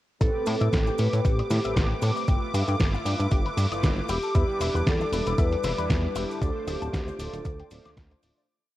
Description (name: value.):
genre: nu-disco, nu disco.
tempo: 116 BPM.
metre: 4/4.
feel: swing 55% on 16ths.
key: A minor.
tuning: A4 = 441 Hz.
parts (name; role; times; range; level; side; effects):
vibraphone with medium hard mallets; melody; 0.2-7.9 s; G4 to B4; -31 LUFS; equal; cassette tape, analog delay.
mellow synth brass; accompaniment; 0.2-8.5 s; G3 to E5; -34 LUFS; right 1 dB; chorus, sidechain pumping, cassette tape.
lush unison pad; sustained chords; 0.2-8.5 s; D6; -36 LUFS; right 1 dB; chorus, sidechain pumping, cassette tape.
electric guitar with an envelope filter; riff; 0.2-8.4 s; D4 to D6; -37 LUFS; left 9 dB; analog chorus, cassette tape.
chorused synth bass; bass; 0.2-8.3 s; D1 to A2; -27 LUFS; equal; none.
dusty soul sampler-style drum kit; drums; 0.2-8.3 s; hi-hat, snare drum; -31 LUFS; equal; cassette tape.
electronic kick drum; drums; 0.2-8.1 s; none; -25 LUFS; equal; cassette tape.
cabasa; percussion; 0.2-8.5 s; none; -49 LUFS; right 13 dB; none.
room: little or no reverb.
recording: home recording on cassette.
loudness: -23 LUFS.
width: side -15 dB against mid.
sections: 0.2-8.5 drop.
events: drop 0.2-8.5; fade-out 5.7-8.5.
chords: 0.2 Am9; 2.3 G13; 4.1 Em7; 6.4 Dm7.